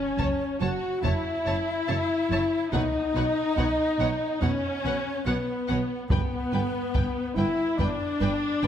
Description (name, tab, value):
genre	cinematic, epic orchestral film score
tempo	71 BPM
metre	4/4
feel	straight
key	unclear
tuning	A4 = 440 Hz
part	mellow hollow concert flute	second line	0.0-8.7 s	B4 to F#5	-34 LUFS	equal	none
part	warm studio viola section	accompaniment	0.0-8.7 s	B3 to F#4	-32 LUFS	equal	none
part	warm French horn section	sustained chords	0.0-8.7 s	B3 to F#4	-28 LUFS	left 3 dB	none
part	impact	sound effects	0.0-2.7 s	none	-49 LUFS	equal	none
part	warm symphonic violin section	melody	0.2-8.7 s	F#5 to A5	-38 LUFS	left 3 dB	none
part	warm symphonic violin section	second line	0.2-8.7 s	B4 to C#5	-39 LUFS	left 2 dB	none
part	rich chamber double bass section	bass	0.2-8.7 s	F#1 to B1	-33 LUFS	right 3 dB	none
part	rich symphonic cello section	bass	0.2-8.7 s	F#2 to B2	-32 LUFS	right 3 dB	none
part	taiko ensemble	drums	0.2-8.2 s	none	-29 LUFS	equal	none
room	moderate scoring stage reverb, RT60 1.7 s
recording	none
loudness	-24 LUFS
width	side -9 dB against mid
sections	0.0-8.7 A section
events	impact 0.0-2.7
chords	0.0 F#7(no3); 2.7 Badd9; 6.1 G